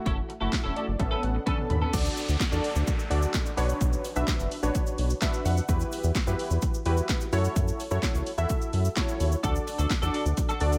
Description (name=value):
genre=dance-pop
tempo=128 BPM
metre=4/4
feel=straight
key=D major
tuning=A4 = 442 Hz
part: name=warm analog keys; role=accompaniment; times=0.0-10.8 s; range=A3 to B5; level=-33 LUFS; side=equal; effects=chorus, sidechain pumping
part: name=twelve-string electric guitar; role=riff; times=0.1-1.9, 9.4-10.8 s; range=B3 to A4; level=-36 LUFS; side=equal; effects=analog chorus
part: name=round analog bass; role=bass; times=0.1-10.8 s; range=E1 to F#2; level=-29 LUFS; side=equal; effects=sidechain pumping
part: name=punchy analog drum machine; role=drums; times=0.1-10.8 s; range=crash cymbal, handclaps, hi-hat, kick drum, shaker, snare drum, toms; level=-31 LUFS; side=equal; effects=none
part: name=swell and downlifter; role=sound effects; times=1.0-5.7 s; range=none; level=-43 LUFS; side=equal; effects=none
part: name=tube shaker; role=percussion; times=1.9-10.8 s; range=none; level=-49 LUFS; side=equal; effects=none
room=little or no reverb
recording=none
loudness=-27 LUFS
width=mono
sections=0.0-1.9 A section; 1.9-10.8 B section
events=synth keys fill 0.5-1.9, 5.0-5.7; drum fill 1.5-1.9; drop 1.9-10.8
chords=0.0 F#m7; 1.0 Aadd9; 1.9 D; 3.6 Bmadd9; 5.7 Emadd9; 7.3 F#m7; 9.4 D